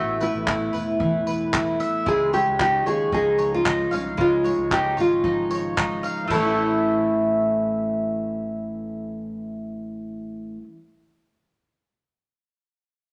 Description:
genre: acoustic pop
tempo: 113 BPM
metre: 4/4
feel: straight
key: unclear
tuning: A4 = 438 Hz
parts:
  - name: nylon-string guitar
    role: melody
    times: 0.0-10.6 s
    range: C#4 to A4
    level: -25 LUFS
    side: equal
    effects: none
  - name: fingerpicked steel-string acoustic guitar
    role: accompaniment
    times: 0.0-10.8 s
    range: A2 to E#4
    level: -28 LUFS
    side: equal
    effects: none
  - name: mandolin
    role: arpeggios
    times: 0.0-10.7 s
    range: G#3 to E#5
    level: -31 LUFS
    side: equal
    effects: none
  - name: fretless electric bass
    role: bass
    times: 0.0-10.6 s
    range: E1 to D#2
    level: -39 LUFS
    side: equal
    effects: none
  - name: cloth-damped thuddy drum kit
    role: drums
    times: 0.2-6.4 s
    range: crash cymbal, handclaps, kick drum, tambourine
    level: -31 LUFS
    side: equal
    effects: none
room: wet large studio reverb, RT60 1.3 s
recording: none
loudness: -22 LUFS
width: mono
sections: 0.0-6.3 A section; 6.3-10.5 B section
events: none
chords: 0.0 Asus2; 2.1 C#add9; 6.3 A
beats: 0.47 1.00 1.53 | 2.06 2.59 3.12 3.65 | 4.18 4.71 5.24 5.77 | 6.30 6.83 7.36 7.89 | 8.42 8.95 9.48 10.01

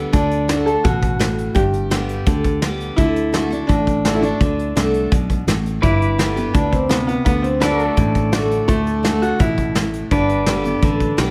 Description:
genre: honky-tonk and classic country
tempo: 168 BPM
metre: 4/4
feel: straight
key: unclear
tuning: A4 = 436 Hz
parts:
  - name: picked steel-string acoustic guitar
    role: accompaniment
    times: 0.0-11.3 s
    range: G2 to G4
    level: -24 LUFS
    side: equal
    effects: none
  - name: fingered electric bass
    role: bass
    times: 0.0-11.3 s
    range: G1 to D2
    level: -26 LUFS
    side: equal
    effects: none
  - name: bright upright piano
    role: second line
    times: 0.1-11.3 s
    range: A3 to A4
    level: -23 LUFS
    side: equal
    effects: none
  - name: soft brush drum kit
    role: drums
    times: 0.1-11.3 s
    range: hi-hat, kick drum, snare drum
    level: -22 LUFS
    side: equal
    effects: none
  - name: pedal steel guitar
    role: sustained chords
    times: 5.8-11.3 s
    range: A4 to D5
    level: -29 LUFS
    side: equal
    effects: none
room: light reverb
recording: none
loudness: -18 LUFS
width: mono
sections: 0.0-11.3 A section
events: upright piano solo 0.0-11.3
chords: 0.1 D; 1.6 G; 3.0 D; 5.8 G; 7.3 D; 10.1 G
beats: | 0.13 0.49 0.84 1.20 | 1.56 1.91 2.27 2.62 | 2.98 3.34 3.69 4.05 | 4.41 4.76 5.12 5.48 | 5.83 6.19 6.54 6.90 | 7.26 7.62 7.97 8.33 | 8.69 9.04 9.40 9.76 | 10.11 10.47 10.83 11.18

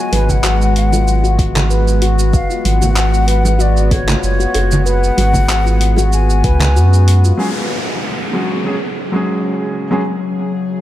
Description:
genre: organic downtempo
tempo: 95 BPM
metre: 4/4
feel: swing 54% on 16ths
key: unclear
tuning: A4 = 439 Hz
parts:
  - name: bright bansuri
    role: melody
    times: 0.0-7.0 s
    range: C#5 to G#5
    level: -21 LUFS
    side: left 4 dB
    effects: digital delay
  - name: bowed-like drone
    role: sustained chords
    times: 0.0-10.8 s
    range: C#3 to G#4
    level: -23 LUFS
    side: equal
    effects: built-in reverb, sidechain pumping
  - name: handpan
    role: arpeggios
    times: 0.1-7.4 s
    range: E#4 to B4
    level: -21 LUFS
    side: left 3 dB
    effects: low-pass filter, digital delay
  - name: warm sub bass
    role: bass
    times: 0.1-7.3 s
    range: F#1 to F#2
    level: -13 LUFS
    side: equal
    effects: sidechain pumping
  - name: deep house drum kit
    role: drums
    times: 0.1-7.4 s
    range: handclaps, hi-hat, shaker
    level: -22 LUFS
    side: right 1 dB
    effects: none
  - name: congas and bongos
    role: percussion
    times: 0.1-6.7 s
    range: none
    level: -22 LUFS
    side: right 2 dB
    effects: none
  - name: electronic kick drum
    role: drums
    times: 0.3-6.6 s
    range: none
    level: -16 LUFS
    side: equal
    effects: none
  - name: felt-muted upright piano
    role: accompaniment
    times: 7.4-10.0 s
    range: F#3 to G#4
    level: -19 LUFS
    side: equal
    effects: sidechain pumping, digital delay
  - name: downlifter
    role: sound effects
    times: 7.4-10.8 s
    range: none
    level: -24 LUFS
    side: equal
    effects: none
room: light reverb, small room ambience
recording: none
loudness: -12 LUFS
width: side -13 dB against mid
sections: 0.0-7.4 A section; 7.4-10.8 B section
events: none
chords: 0.0 F#sus2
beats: 0.44 1.07 1.70 | 2.33 2.97 3.60 4.23 | 4.86 5.49 6.12 6.76 | 7.39 8.02 8.65 9.28 | 9.91 10.54

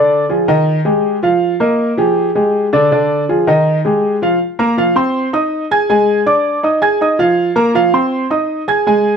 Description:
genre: latin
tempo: 161 BPM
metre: 4/4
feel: straight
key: unclear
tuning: A4 = 440 Hz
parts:
  - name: clear baby grand piano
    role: solo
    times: 0.0-9.2 s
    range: D3 to Ab6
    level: -12 LUFS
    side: equal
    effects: none
room: moderate studio reverb, RT60 0.9 s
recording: close, detailed microphones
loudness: -12 LUFS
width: side -6 dB against mid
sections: 0.0-4.4 A section; 4.4-9.2 B section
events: none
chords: 0.0 Ddim; 0.7 Ab5; 1.4 Ebsus2; 2.2 Fm69; 2.9 Ddim; 3.7 Ab5; 4.4 Fsus4; 5.1 Ab; 5.9 N.C.; 6.6 Ab5; 7.4 Fsus4; 8.1 Ab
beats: 0.30 0.67 1.05 | 1.42 1.79 2.17 2.54 | 2.91 3.29 3.66 4.03 | 4.40 4.78 5.15 5.52 | 5.89 6.26 6.63 7.01 | 7.38 7.75 8.12 8.49 | 8.87

